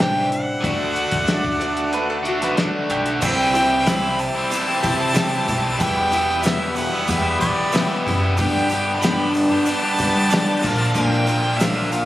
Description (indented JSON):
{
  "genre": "folk rock and heartland rock",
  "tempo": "93 BPM",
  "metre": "4/4",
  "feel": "straight",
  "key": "unclear",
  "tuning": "A4 = 442 Hz",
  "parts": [
    { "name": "clear harmonica", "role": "melody", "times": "0.0-12.1 s", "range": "D5 to B5", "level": "-23 LUFS", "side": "right 1 dB", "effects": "analog delay" },
    { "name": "picked acoustic archtop guitar", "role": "accompaniment", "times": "0.0-12.1 s", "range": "G2 to Bb4", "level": "-24 LUFS", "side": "left 2 dB", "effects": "none" },
    { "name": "bright tonewheel organ", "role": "sustained chords", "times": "0.0-12.1 s", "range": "D4 to F#5", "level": "-32 LUFS", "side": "right 1 dB", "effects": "none" },
    { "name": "biting overdriven guitar", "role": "riff", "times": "0.0-12.1 s", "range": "E2 to G4", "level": "-23 LUFS", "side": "equal", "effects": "none" },
    { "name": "upright bass", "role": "bass", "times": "0.0-12.0 s", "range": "A1 to G3", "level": "-26 LUFS", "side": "equal", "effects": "none" },
    { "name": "cloth-damped thuddy drum kit", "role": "drums", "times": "0.0-12.1 s", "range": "crash cymbal, hi-hat, kick drum, snare drum", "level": "-25 LUFS", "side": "equal", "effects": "none" },
    { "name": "bowl-back mandolin", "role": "second line", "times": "1.3-3.2 s", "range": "G4 to D5", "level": "-28 LUFS", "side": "right 2 dB", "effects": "analog delay" },
    { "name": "tube shaker", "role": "percussion", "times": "3.2-12.1 s", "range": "none", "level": "-34 LUFS", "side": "right 5 dB", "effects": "none" }
  ],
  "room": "light reverb",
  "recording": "recorded on a phone in the room, club reverb, compression",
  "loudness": "-17 LUFS",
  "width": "side -14 dB against mid",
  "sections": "0.0-3.2 A section; 3.2-12.1 B section",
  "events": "none",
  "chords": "0.0 Cadd9; 0.6 D; 3.2 C; 5.8 Em; 8.4 G; 10.6 Bb"
}